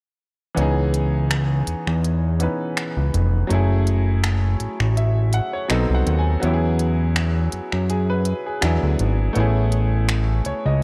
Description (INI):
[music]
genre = contemporary R&B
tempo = 82 BPM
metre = 4/4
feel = swing 54% on 16ths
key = C# minor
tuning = A4 = 441 Hz
[part]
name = clear baby grand piano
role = accompaniment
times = 0.5-10.8 s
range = E3 to G#5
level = -27 LUFS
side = equal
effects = none
[part]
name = fat analog bass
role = bass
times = 0.6-10.8 s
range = E#1 to F#2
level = -21 LUFS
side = equal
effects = none
[part]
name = trap drum kit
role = drums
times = 0.6-10.6 s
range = finger snaps, hi-hat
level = -31 LUFS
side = equal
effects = none
[sound]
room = little or no reverb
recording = dark, warm production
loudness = -21 LUFS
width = mono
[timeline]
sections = 0.6-10.8 A section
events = kick muted 0.6-10.8; grand piano fill 5.3-6.4, 10.1-10.8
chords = 0.6 C#m7; 3.5 F#m9; 5.7 B7b9; 6.4 E69; 8.6 E7; 9.4 Amaj7